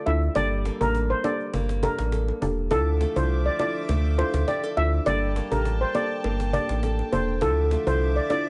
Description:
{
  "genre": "dancehall",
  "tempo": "102 BPM",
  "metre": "4/4",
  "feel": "straight",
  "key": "unclear",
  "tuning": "A4 = 440 Hz",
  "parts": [
    { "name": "flamenco guitar", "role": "arpeggios", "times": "0.0-8.5 s", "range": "D3 to A4", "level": "-36 LUFS", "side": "equal", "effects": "none" },
    { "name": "steel pan", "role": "melody", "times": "0.1-8.4 s", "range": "A4 to E5", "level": "-29 LUFS", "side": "equal", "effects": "digital delay" },
    { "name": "soft round pluck", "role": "accompaniment", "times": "0.1-8.5 s", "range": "Bb3 to A4", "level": "-33 LUFS", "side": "equal", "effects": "chorus" },
    { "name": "warm sub bass", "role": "bass", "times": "0.1-8.2 s", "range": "E1 to D2", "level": "-27 LUFS", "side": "equal", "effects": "none" },
    { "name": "cajon", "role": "drums", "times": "0.1-8.5 s", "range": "none", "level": "-38 LUFS", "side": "equal", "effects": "none" },
    { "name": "bongos", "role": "percussion", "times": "0.1-8.4 s", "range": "none", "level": "-40 LUFS", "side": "equal", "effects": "none" },
    { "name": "warm studio string section", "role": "sustained chords", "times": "2.7-8.5 s", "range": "F3 to D6", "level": "-40 LUFS", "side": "equal", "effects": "none" }
  ],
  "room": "small room ambience",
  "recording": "nothing above 10.4 kHz",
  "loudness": "-24 LUFS",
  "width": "mono",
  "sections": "0.0-8.5 A section",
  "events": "none",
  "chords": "0.4 Gmadd9; 2.7 Dmadd9; 5.1 Gmadd9; 7.4 Dmadd9"
}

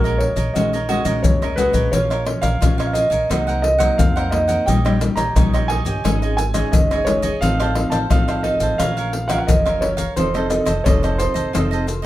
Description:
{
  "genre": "samba and choro",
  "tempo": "87 BPM",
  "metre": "4/4",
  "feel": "straight",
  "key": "Bb minor",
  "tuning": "A4 = 441 Hz",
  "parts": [
    { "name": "warm grand piano", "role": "melody", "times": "0.0-12.1 s", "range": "Bb4 to Bb5", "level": "-21 LUFS", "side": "right 1 dB", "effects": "none" },
    { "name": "cavaquinho", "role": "accompaniment", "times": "0.0-12.1 s", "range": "Eb4 to Gb5", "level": "-27 LUFS", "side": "right 4 dB", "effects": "none" },
    { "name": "nylon-string guitar", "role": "accompaniment", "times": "0.0-12.1 s", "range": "Ab2 to A4", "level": "-25 LUFS", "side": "left 2 dB", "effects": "none" },
    { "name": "upright bass", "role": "bass", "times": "0.0-12.1 s", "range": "F1 to F2", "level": "-23 LUFS", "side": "right 1 dB", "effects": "none" },
    { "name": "maracas, surdo, pandeiro and tamborim", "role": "percussion", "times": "0.1-12.1 s", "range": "none", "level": "-20 LUFS", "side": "left 1 dB", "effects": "none" }
  ],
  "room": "moderate studio reverb, RT60 0.6 s",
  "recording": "band playing live in one room",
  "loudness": "-16 LUFS",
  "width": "side -15 dB against mid",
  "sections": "0.0-1.9 A section; 1.9-12.1 B section",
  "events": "drum fill 1.4-1.9",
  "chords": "0.0 Ebm11; 1.9 Bbm; 3.3 Cm7b5; 4.7 Eb7/Bb; 6.0 Absus4; 7.4 F7/A; 8.8 Bbm; 10.2 F7"
}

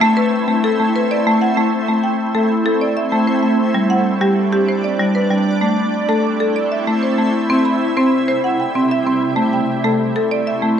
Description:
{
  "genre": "world meditative, meditative tuned percussion",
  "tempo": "96 BPM",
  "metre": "3/4",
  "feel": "straight",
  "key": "A dorian",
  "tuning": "A4 = 441 Hz",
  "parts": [
    { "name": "shimmering ambient pad", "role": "sustained chords", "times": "0.0-10.8 s", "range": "C3 to D5", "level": "-20 LUFS", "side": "right 2 dB", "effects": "chorus, built-in reverb, shimmer reverb" },
    { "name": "marimba with hard mallets", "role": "arpeggios", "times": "0.0-10.8 s", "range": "G3 to B5", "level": "-16 LUFS", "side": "left 1 dB", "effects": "shimmer reverb" }
  ],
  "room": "wet echo chamber reverb, RT60 1.6 s",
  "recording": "cassette tape",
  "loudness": "-14 LUFS",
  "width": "side -8 dB against mid",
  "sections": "0.0-1.9 A section; 1.9-10.8 B section",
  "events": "none",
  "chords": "0.0 Am; 3.8 G; 5.6 Am; 7.5 C; 9.4 Am"
}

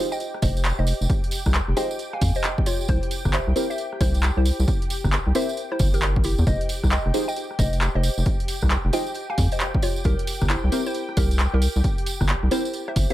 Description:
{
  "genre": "UK garage, two-step garage",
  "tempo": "134 BPM",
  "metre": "4/4",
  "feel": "swing 63% on 16ths",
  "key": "unclear",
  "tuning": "A4 = 440 Hz",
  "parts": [
    { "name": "warm analog pad", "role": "sustained chords", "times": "0.0-13.1 s", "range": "G4 to G5", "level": "-36 LUFS", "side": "left 2 dB", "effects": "chorus, sidechain pumping" },
    { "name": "deep mellow chord stab", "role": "stabs", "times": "0.0-13.1 s", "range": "C4 to C5", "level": "-26 LUFS", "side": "equal", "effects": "chorus, digital delay" },
    { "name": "hollow square pluck", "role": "melody", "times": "0.1-13.1 s", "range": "E4 to Ab5", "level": "-30 LUFS", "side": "equal", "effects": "chorus, tape echo" },
    { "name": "tambourine", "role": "percussion", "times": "0.1-13.1 s", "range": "none", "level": "-36 LUFS", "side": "right 5 dB", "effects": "none" },
    { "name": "punchy analog drum machine", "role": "drums", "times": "0.2-13.1 s", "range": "handclaps, hi-hat, rim click", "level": "-29 LUFS", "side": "equal", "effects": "none" },
    { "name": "rubbery square bass", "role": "bass", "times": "0.4-13.1 s", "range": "F1 to F2", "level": "-21 LUFS", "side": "equal", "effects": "none" },
    { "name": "electronic kick drum", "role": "drums", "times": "0.4-13.1 s", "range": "none", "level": "-24 LUFS", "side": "equal", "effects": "none" }
  ],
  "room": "little or no reverb",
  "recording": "none",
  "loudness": "-20 LUFS",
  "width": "side -15 dB against mid",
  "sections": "0.0-13.1 A section",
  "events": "none",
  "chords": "0.0 F7sus2; 2.9 C7; 6.5 Fm9; 10.1 C7"
}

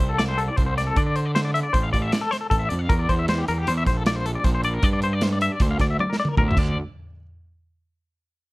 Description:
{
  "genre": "math rock and midwest emo",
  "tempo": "155 BPM",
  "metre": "5/4",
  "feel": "straight",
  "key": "unclear",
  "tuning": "A4 = 441 Hz",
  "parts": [
    { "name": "twangy electric guitar", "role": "arpeggios", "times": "0.0-6.8 s", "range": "G4 to F5", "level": "-25 LUFS", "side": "left 3 dB", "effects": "tremolo" },
    { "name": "fuzz picked electric bass", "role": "bass", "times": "0.0-6.7 s", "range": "A1 to D3", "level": "-24 LUFS", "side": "right 1 dB", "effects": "overdrive" },
    { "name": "modern studio drum kit", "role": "drums", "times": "0.0-6.7 s", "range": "crash cymbal, hi-hat, kick drum, snare drum, toms", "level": "-24 LUFS", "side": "right 1 dB", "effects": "none" }
  ],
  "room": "little or no reverb",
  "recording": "worn, warbling old tape, cassette tape, warbly pitch drift",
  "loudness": "-20 LUFS",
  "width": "side -21 dB against mid",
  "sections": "0.0-6.8 A section; 6.8-8.5 B section",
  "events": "drum fill 6.0-6.8",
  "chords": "0.0 Dm7; 2.9 C7/E; 4.8 Gm; 6.6 N.C."
}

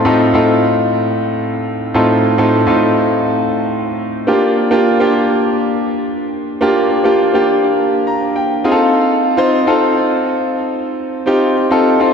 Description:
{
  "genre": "pop",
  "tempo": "103 BPM",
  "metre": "4/4",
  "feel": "straight",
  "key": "unclear",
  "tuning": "A4 = 441 Hz",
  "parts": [
    { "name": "clear concert grand piano", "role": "solo", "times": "0.0-12.1 s", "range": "A2 to Bb5", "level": "-12 LUFS", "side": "equal", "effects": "ping-pong delay" }
  ],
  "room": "wet lush hall reverb, RT60 3.0 s",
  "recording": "dreamy mix soaked in reverb",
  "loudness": "-12 LUFS",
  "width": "side -6 dB against mid",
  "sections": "0.0-12.1 A section",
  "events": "grand piano fill 7.8-8.9",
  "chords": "0.0 F7/A; 4.3 Gm7; 8.6 F7"
}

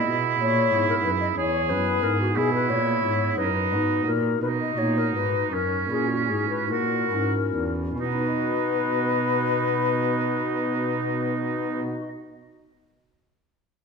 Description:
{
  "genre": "classical, baroque-style sonata movement with continuo",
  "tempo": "45-63 BPM (dotted quarters)",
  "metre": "12/8",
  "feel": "rubato",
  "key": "B major",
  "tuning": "A4 = 440 Hz",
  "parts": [
    { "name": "baroque flute", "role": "melody", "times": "0.0-11.8 s", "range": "F#4 to D#5", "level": "-27 LUFS", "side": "left 6 dB", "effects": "none" },
    { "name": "clear oboe", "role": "second line", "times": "0.0-11.8 s", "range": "C#4 to G#4", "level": "-27 LUFS", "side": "right 7 dB", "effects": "none" },
    { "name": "pipe organ, stopped flute", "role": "accompaniment", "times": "0.0-12.1 s", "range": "E2 to D#5", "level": "-28 LUFS", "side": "equal", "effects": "none" },
    { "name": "dark cello", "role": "bass", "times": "0.0-11.8 s", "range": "E2 to B2", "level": "-29 LUFS", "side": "right 2 dB", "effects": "none" }
  ],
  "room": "wet recital hall reverb, RT60 1.4 s",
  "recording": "none",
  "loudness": "-22 LUFS",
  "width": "side -5 dB against mid",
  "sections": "0.0-8.0 A section; 8.0-13.1 B section",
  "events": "slowing down 0.7-8.0",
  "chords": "0.0 E; 3.4 B/F#; 5.5 F#7; 8.0 B"
}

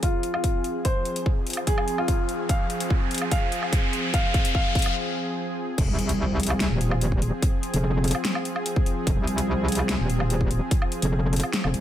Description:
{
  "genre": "heavy wobble dubstep",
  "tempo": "146 BPM",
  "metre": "4/4",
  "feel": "half-time",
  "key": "F minor",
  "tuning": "A4 = 440 Hz",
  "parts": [
    { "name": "warm concert grand piano", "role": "melody", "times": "0.0-4.9 s", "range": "F4 to F5", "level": "-29 LUFS", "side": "left 1 dB", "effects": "low-pass filter, digital delay" },
    { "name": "lush unison pad", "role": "sustained chords", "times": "0.0-11.8 s", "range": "F3 to Ab4", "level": "-30 LUFS", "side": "equal", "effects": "chorus, sidechain pumping" },
    { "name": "dubstep drum kit", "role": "drums", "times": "0.0-11.8 s", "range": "crash cymbal, hi-hat, snare drum, woodblock", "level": "-30 LUFS", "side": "left 1 dB", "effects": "high-pass filter on hats, high-pass filter on snare, high-pass filter on perc, high-pass filter on cymbals" },
    { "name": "electronic kick drum", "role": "drums", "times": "0.0-10.8 s", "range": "none", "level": "-24 LUFS", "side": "equal", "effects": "none" },
    { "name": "riser and impact", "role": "sound effects", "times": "1.5-7.4 s", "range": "none", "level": "-32 LUFS", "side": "equal", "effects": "none" },
    { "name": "metallic wobble bass", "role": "bass", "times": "5.8-11.8 s", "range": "Eb1 to C2", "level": "-23 LUFS", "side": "equal", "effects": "distortion, chorus, overdrive" }
  ],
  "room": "little or no reverb",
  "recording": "none",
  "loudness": "-22 LUFS",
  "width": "side -11 dB against mid",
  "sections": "0.0-5.8 A section; 5.8-11.8 B section",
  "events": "build-up 0.0-5.8; filter sweep on grand piano 0.0-5.8; riser 1.5-5.0; drum fill 2.5-5.0; break 5.0-5.8; drop 5.8-11.8; impact 5.8-7.4",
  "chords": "0.0 Fm"
}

